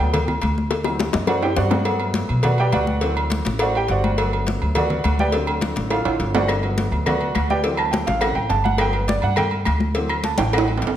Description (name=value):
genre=latin, salsa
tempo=208 BPM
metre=4/4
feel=straight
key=G major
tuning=A4 = 439 Hz
part: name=warm baby grand piano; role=accompaniment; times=0.0-10.7 s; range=D3 to A5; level=-24 LUFS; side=right 2 dB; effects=none
part: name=upright bass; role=bass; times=0.0-11.0 s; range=G1 to B2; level=-23 LUFS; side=equal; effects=none
part: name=agogo bells and timbales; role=percussion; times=0.0-10.9 s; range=none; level=-26 LUFS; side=right 3 dB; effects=none
part: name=congas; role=percussion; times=0.1-11.0 s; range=none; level=-27 LUFS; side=left 2 dB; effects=none
part: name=cowbell and bongos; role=percussion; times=0.1-11.0 s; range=none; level=-27 LUFS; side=left 4 dB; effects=none
part: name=claves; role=percussion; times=6.5-10.7 s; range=none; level=-32 LUFS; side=left 8 dB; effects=none
room=wet recital hall reverb, RT60 1.3 s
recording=none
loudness=-18 LUFS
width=side -10 dB against mid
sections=0.0-11.0 A section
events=grand piano solo 0.0-11.0; drum fill 0.7-1.9, 5.9-6.5, 10.4-11.0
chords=0.0 Gmaj7; 0.7 D7; 1.9 Gmaj7; 3.0 D7; 4.2 Gmaj7; 5.3 D7; 6.5 Gmaj7; 7.6 D7; 8.8 Gmaj7; 10.0 D7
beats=0.14 0.42 | 0.71 1.00 1.29 1.58 | 1.87 2.16 2.45 2.73 | 3.02 3.31 3.60 3.89 | 4.18 4.47 4.76 5.04 | 5.33 5.62 5.91 6.20 | 6.49 6.78 7.07 7.35 | 7.64 7.93 8.22 8.51 | 8.80 9.09 9.38 9.66 | 9.95 10.24 10.53 10.82